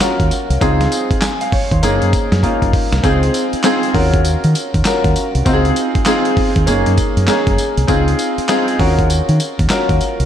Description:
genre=R&B, new jack swing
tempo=99 BPM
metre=4/4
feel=swing 63% on 16ths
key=unclear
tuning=A4 = 440 Hz
part: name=clear grand piano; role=accompaniment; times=0.0-10.3 s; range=Bb3 to Ab5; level=-16 LUFS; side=equal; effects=wide subtle chorus
part: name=deep dub fingered electric bass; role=bass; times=0.0-10.3 s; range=Gb1 to Eb3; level=-16 LUFS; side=equal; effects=none
part: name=dusty soul sampler-style drum kit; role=drums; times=0.0-10.3 s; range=handclaps, hi-hat, kick drum, snare drum, tambourine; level=-18 LUFS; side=equal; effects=none
room=moderate lush hall reverb, RT60 2.5 s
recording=dreamy mix soaked in reverb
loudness=-12 LUFS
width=side -10 dB against mid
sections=0.0-10.3 A section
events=drum fill 2.4-3.0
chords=0.0 Ebm7; 0.6 Dbmaj9; 1.8 Gb6; 3.0 Dbmaj9; 3.9 Ebm7; 5.5 Dbmaj9; 6.7 Gb6; 7.9 Dbmaj9; 8.8 Ebm7

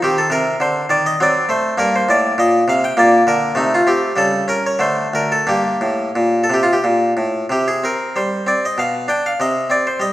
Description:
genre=classical, baroque-style suite movement for harpsichord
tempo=87-104 BPM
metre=3/4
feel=rubato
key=G minor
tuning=A4 = 439 Hz
part: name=harpsichord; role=solo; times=0.0-10.1 s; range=D2 to G5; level=-14 LUFS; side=equal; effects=none
room=wet recital hall reverb, RT60 1.4 s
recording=none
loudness=-14 LUFS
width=side -15 dB against mid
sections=0.0-7.5 A section; 7.5-10.1 A section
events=none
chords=0.0 Cm; 1.2 D7/F#; 1.8 Gm; 3.0 Bb; 3.6 Cm6; 4.2 A7b9/C#; 4.8 D5; 5.5 Gm; 7.5 C5; 8.8 Bdim; 9.4 Cm

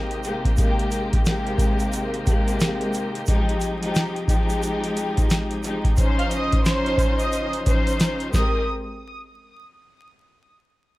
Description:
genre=hip hop, boom-bap hip-hop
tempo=89 BPM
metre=4/4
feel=swing 61% on 16ths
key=Ab major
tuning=A4 = 440 Hz
part: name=warm studio string section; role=accompaniment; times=0.0-8.6 s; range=C3 to C5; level=-25 LUFS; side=left 1 dB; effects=cassette tape, high-pass filter, low-pass filter, plate reverb
part: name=bright tonewheel organ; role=sustained chords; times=0.0-8.7 s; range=Db2 to C5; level=-34 LUFS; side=equal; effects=overdrive, fast rotary speaker, high-pass filter, low-pass filter
part: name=booming analog drum machine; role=drums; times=0.1-8.5 s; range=hi-hat, kick drum, snare drum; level=-22 LUFS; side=equal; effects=none
part: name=egg shaker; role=percussion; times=0.2-8.6 s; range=none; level=-40 LUFS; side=right 6 dB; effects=none
part: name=rich studio violin section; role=melody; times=6.2-8.7 s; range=C5 to F6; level=-29 LUFS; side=right 2 dB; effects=high-pass filter, low-pass filter, digital delay
room=light reverb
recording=vinyl crackle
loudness=-20 LUFS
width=side -18 dB against mid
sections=0.0-8.7 A section; 8.7-11.0 B section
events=none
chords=0.0 Abmaj9; 3.3 Fm9; 6.0 Dbmaj9; 8.3 Abmaj9; 8.7 N.C.

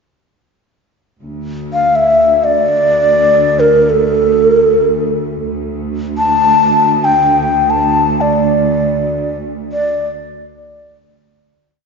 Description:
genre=Arabic maqam ensemble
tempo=free time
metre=none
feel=none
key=unclear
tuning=A4 = 442 Hz
part: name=muted symphonic cello section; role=drone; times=1.2-9.8 s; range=D2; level=-18 LUFS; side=right 3 dB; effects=none
part: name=breathy mellow low ney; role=melody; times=1.7-10.1 s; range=A4 to A5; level=-11 LUFS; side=left 1 dB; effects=none
room=wet scoring stage reverb, RT60 1.8 s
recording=recorded in a church or concert hall, nothing above 7.5 kHz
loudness=-10 LUFS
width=side -5 dB against mid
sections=1.2-9.7 free-time section; 9.7-11.9 final note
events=none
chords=none

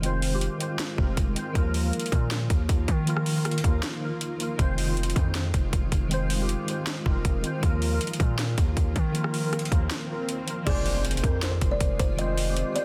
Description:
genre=hip hop, trap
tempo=158 BPM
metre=4/4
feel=half-time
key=F minor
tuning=A4 = 438 Hz
part: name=glassy digital keys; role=accompaniment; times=0.0-12.8 s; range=Eb3 to C5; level=-34 LUFS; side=equal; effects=chorus
part: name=granular cloud pad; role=sustained chords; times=0.0-12.8 s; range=Eb3 to F4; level=-39 LUFS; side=equal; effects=built-in reverb
part: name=distorted 808-style bass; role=bass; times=0.0-12.6 s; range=F1 to Eb3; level=-30 LUFS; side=equal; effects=distortion
part: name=trap drum kit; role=drums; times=0.0-12.8 s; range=crash cymbal, hi-hat, kick drum, rim click, snare drum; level=-30 LUFS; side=equal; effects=none
part: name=swell and impact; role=sound effects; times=9.1-12.2 s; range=none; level=-41 LUFS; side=equal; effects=none
part: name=kalimba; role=melody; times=10.7-12.8 s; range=Ab4 to Eb5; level=-34 LUFS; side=equal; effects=digital delay
part: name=soft octave-layered synth lead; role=second line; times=10.7-11.8 s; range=C5 to D5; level=-38 LUFS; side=equal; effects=chorus, digital delay
room=little or no reverb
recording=dense, heavily limited modern master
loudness=-26 LUFS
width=mono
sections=0.0-10.7 A section; 10.7-12.8 B section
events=break 3.8-4.6, 9.9-10.7; swell 9.1-10.7; impact 10.7-12.2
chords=0.0 Fm7; 1.6 Ebsus2; 4.6 Fm7; 7.6 Ebsus2; 10.7 Fm7

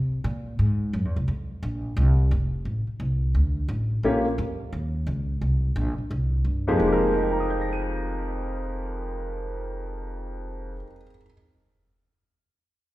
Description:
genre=jazz, big band swing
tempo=174 BPM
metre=4/4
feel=swing 64% on 8ths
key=F minor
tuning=A4 = 440 Hz
part: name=upright bass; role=bass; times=0.0-10.8 s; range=F1 to C3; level=-25 LUFS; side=equal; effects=none
part: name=clear grand piano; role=accompaniment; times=4.0-4.2, 6.7-11.3 s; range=F2 to Eb7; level=-25 LUFS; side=equal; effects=none
room=wet recital hall reverb, RT60 1.6 s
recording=recorded in a church or concert hall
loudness=-23 LUFS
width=side -16 dB against mid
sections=0.0-4.0 A section; 4.0-6.8 B section; 6.8-9.6 C section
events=none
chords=0.0 Caug7; 1.3 Fsus4; 2.7 Am; 3.4 D5; 4.0 Gm7b5; 5.4 C5; 6.8 Fm11

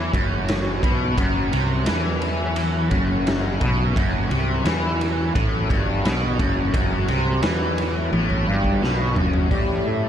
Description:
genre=psychedelic rock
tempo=86 BPM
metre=4/4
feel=straight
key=unclear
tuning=A4 = 440 Hz
part: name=combo organ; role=sustained chords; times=0.0-10.1 s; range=F#3 to C#5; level=-32 LUFS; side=right 3 dB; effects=lush chorus
part: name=overdriven electric guitar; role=riff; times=0.0-10.1 s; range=F#2 to E3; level=-23 LUFS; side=left 1 dB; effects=rotary speaker
part: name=fuzz fingered electric bass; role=bass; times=0.0-10.1 s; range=F#1 to A2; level=-25 LUFS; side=equal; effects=overdrive
part: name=raw garage drum kit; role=drums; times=0.1-9.7 s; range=hi-hat, kick drum, ride cymbal, snare drum, toms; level=-24 LUFS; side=equal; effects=none
part: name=lead with added fifth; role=melody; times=9.5-10.1 s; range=G4 to A4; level=-25 LUFS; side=left 3 dB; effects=chorus, analog delay
room=moderate huge ambient reverb, RT60 7.8 s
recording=dreamy mix soaked in reverb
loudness=-19 LUFS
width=side -9 dB against mid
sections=0.0-9.5 A section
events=drum fill 8.1-9.5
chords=0.0 F#5; 9.5 Am

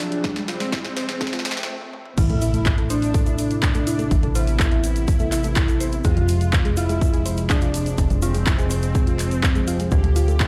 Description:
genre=melodic techno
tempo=124 BPM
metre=4/4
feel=straight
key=A minor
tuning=A4 = 440 Hz
part: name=soft supersaw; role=melody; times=0.0-10.5 s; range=C4 to G4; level=-30 LUFS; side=equal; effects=sidechain pumping, tape echo
part: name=warm analog pad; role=sustained chords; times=0.0-10.5 s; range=C3 to Ab4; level=-32 LUFS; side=equal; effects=chorus, sidechain pumping
part: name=plucky analog bass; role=bass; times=0.0-10.5 s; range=F1 to D2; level=-25 LUFS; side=equal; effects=sidechain pumping
part: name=overtone-sweeping drone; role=drone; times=0.0-1.7 s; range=A2 to A3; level=-50 LUFS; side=equal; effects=none
part: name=house drum kit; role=drums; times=0.0-10.5 s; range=crash cymbal, handclaps, hi-hat, snare drum, toms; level=-30 LUFS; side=equal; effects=high-pass filter on snare, high-pass filter on hats, high-pass filter on toms, high-pass filter on cymbals
part: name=riser and impact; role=sound effects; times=0.0-4.1 s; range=none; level=-35 LUFS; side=equal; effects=none
part: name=electronic kick drum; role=drums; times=0.2-10.5 s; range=none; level=-23 LUFS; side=equal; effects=none
part: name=soft round pluck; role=arpeggios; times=0.4-10.4 s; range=Ab3 to C6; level=-33 LUFS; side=equal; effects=chorus, sidechain pumping, dub echo
part: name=dark detuned synth bell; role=second line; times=2.2-10.5 s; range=C4 to G4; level=-35 LUFS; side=equal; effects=chorus, tremolo, sidechain pumping, dub echo
part: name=tube shaker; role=percussion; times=2.2-10.5 s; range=none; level=-40 LUFS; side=equal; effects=none
room=light reverb, digital ambience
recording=played on a big sound system in a bare room, large studio reverb, high-pass filter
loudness=-21 LUFS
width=mono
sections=0.0-2.2 A section; 2.2-10.5 B section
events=build-up 0.0-2.2; drum fill 0.0-1.7, 1.8-2.2; riser 0.0-1.7; filter sweep on supersaw synth 0.0-2.2; filter sweep 0.0-2.2; stop 1.7-2.2; drop 2.2-10.5; impact 2.2-4.1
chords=0.0 Fm; 2.2 Am; 6.0 Fm; 9.9 Dm7

